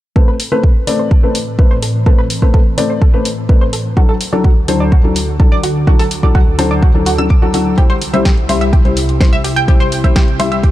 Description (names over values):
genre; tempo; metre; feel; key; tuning
progressive house; 126 BPM; 4/4; straight; A dorian; A4 = 443 Hz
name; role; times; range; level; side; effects
lush unison pad; sustained chords; 1.0-10.7 s; C2 to B4; -20 LUFS; equal; chorus, sidechain pumping
analog pluck; arpeggios; 0.2-10.7 s; F#4 to E6; -21 LUFS; right 3 dB; lush chorus, sidechain pumping, dub echo
felt-muted upright piano; stabs; 0.2-10.7 s; F#3 to E5; -17 LUFS; left 3 dB; sidechain pumping, low-pass filter, dub echo
electronic kick drum; drums; 0.2-10.7 s; none; -10 LUFS; equal; none
house drum kit; drums; 0.4-10.7 s; hi-hat, snare drum; -22 LUFS; equal; sidechain pumping on hats
room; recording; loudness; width
digital ambience; dark, warm production; -10 LUFS; side -14 dB against mid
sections
0.2-10.7 A section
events
filter sweep on synth pluck 0.2-10.7; filter sweep on analog synth pad 0.2-10.7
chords
0.2 Amadd9; 4.0 D; 7.8 C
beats
| 0.16 0.64 1.11 1.59 | 2.06 2.54 3.02 3.49 | 3.97 4.44 4.92 5.40 | 5.87 6.35 6.83 7.30 | 7.78 8.25 8.73 9.21 | 9.68 10.16 10.63